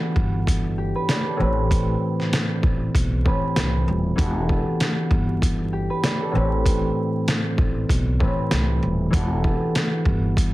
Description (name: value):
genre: hip hop, boom-bap hip-hop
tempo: 97 BPM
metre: 4/4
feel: swing 56% on 16ths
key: E minor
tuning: A4 = 439 Hz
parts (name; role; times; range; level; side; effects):
- concert harp; accompaniment; 0.0-10.5 s; A2 to D5; -23 LUFS; equal; high-pass filter, low-pass filter
- upright bass; bass; 0.2-10.5 s; D#1 to C2; -24 LUFS; equal; none
- trip hop sampler-style drum kit; drums; 0.2-10.5 s; hi-hat, kick drum, snare drum; -23 LUFS; equal; none
room: light reverb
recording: heavily compressed radio sound, multiband compression, vinyl crackle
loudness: -19 LUFS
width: side -17 dB against mid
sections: 0.0-10.5 A section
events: none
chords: 0.0 Em11; 1.4 Am9; 4.2 Em11; 6.3 Am9; 9.1 Em11